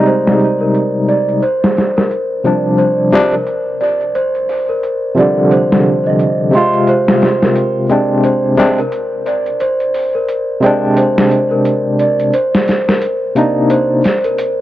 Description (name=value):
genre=trip hop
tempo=88 BPM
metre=4/4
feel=swing 58% on 16ths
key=unclear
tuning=A4 = 441 Hz
part: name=barky tine electric piano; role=accompaniment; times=0.0-14.0 s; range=C3 to F4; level=-14 LUFS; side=equal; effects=medium stereo tremolo, low-pass filter, tape echo
part: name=large celesta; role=arpeggios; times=0.0-14.6 s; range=Bb4 to C6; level=-15 LUFS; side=right 1 dB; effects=vintage 12-bit sampler grit, low-pass filter, tape echo
part: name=boom bap sampler-style drum kit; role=drums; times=0.1-14.6 s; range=hi-hat, snare drum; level=-15 LUFS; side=equal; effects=overdrive, low-pass filter on hats, low-pass filter on snare
room=light reverb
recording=dry, gritty hardware recording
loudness=-11 LUFS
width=side -14 dB against mid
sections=0.0-14.6 A section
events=filter sweep on tine electric piano 0.0-14.6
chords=0.0 Cm9; 1.4 Ebmaj7/C; 6.9 Bb7/C; 12.3 Cm7